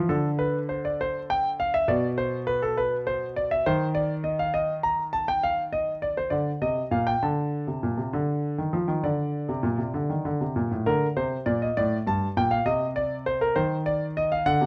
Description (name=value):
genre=classical, baroque-style two-part invention for grand piano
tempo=67 BPM (dotted quarters)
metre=12/8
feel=straight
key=unclear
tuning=A4 = 440 Hz
part: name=clear concert grand piano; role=solo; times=0.0-14.7 s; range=G2 to Bb5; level=-26 LUFS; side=equal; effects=none
room=moderate stone room reverb, RT60 0.9 s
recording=dark, warm production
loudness=-26 LUFS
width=mono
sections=0.0-10.9 A section; 10.9-14.7 B section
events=none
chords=0.1 D7(no3); 1.9 Bm; 3.7 Cm/Eb; 7.2 D5; 10.9 Gm; 12.7 Cm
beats=| 0.10 0.99 1.88 2.77 | 3.65 4.54 5.43 6.32 | 7.23 8.14 9.05 9.96 | 10.88 11.78 12.68 13.57 | 14.46